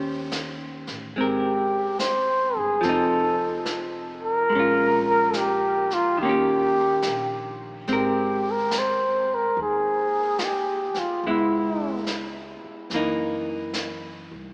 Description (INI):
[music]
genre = jazz ballad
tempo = 72 BPM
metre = 4/4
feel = swing 66% on 8ths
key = Ab major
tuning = A4 = 439 Hz
[part]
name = vintage hollow-body jazz guitar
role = accompaniment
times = 0.0-14.5 s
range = Eb3 to C5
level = -30 LUFS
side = equal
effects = none
[part]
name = upright bass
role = bass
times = 0.0-14.5 s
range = F1 to Gb2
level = -45 LUFS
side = equal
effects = none
[part]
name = jazz brush drum kit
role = drums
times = 0.3-14.5 s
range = brushed snare drum, hi-hat, snare drum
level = -38 LUFS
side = equal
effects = none
[part]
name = breathy trumpet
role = melody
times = 1.2-12.1 s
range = Fb4 to C5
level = -26 LUFS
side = equal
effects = none
[sound]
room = wet cathedral reverb, RT60 4.8 s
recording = in a vast, echoing space, small speaker sound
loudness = -24 LUFS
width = mono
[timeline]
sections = 0.0-7.9 A section; 7.9-14.5 A section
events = none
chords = 0.0 Eb6; 1.2 Abmaj9; 2.8 F7; 4.5 Bbm7; 6.2 Eb7; 7.9 Abadd9; 11.2 Dbm7; 12.9 Gb6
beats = 0.32 | 1.16 1.99 2.83 3.67 | 4.51 5.35 6.19 7.03 | 7.87 8.71 9.55 10.39 | 11.23 12.07 12.91 13.75